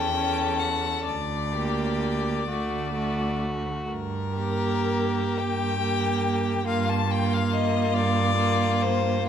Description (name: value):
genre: classical, slow romantic movement for string quartet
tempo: 39-48 BPM (dotted quarters)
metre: 6/8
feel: rubato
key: G minor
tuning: A4 = 441 Hz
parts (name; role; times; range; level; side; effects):
- clear violin; melody; 0.0-9.3 s; Bb4 to A5; -29 LUFS; left 8 dB; none
- rich violin; second line; 0.0-9.3 s; F4 to A4; -30 LUFS; left 3 dB; none
- rich viola; accompaniment; 0.0-9.2 s; A3 to C#4; -29 LUFS; right 3 dB; none
- clear cello; bass; 0.0-9.1 s; D2 to G2; -28 LUFS; right 4 dB; none
room: moderate recital hall reverb, RT60 1.6 s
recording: close, detailed microphones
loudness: -23 LUFS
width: side -8 dB against mid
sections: 0.0-9.3 A section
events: none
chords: 0.0 A7/E; 1.1 Gm/D; 2.5 D; 3.9 Gm